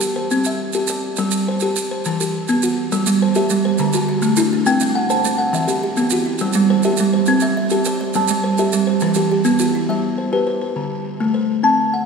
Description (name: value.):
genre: southern african traditional, mbira-style interlocking cycle.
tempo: 138 BPM (dotted quarters).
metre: 12/8.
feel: straight.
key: G major.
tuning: A4 = 440 Hz.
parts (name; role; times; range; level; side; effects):
buzzing kalimba; arpeggios; 0.0-12.1 s; D3 to A5; -18 LUFS; left 2 dB; none.
maracas; percussion; 0.0-9.7 s; none; -26 LUFS; right 6 dB; none.
buzzing kalimba; arpeggios; 3.1-10.2 s; D3 to A5; -20 LUFS; right 7 dB; none.
room: wet cathedral reverb, RT60 4.7 s.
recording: recorded in a church or concert hall.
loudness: -16 LUFS.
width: side -5 dB against mid.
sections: 0.0-9.9 A section; 9.9-12.1 A section.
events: none.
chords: 0.3 C; 1.2 G5; 2.1 Em; 2.9 G5; 3.8 D; 4.7 C; 5.5 Em; 6.4 G5; 7.3 C; 8.1 G5; 9.0 Em; 9.9 G; 10.8 D5.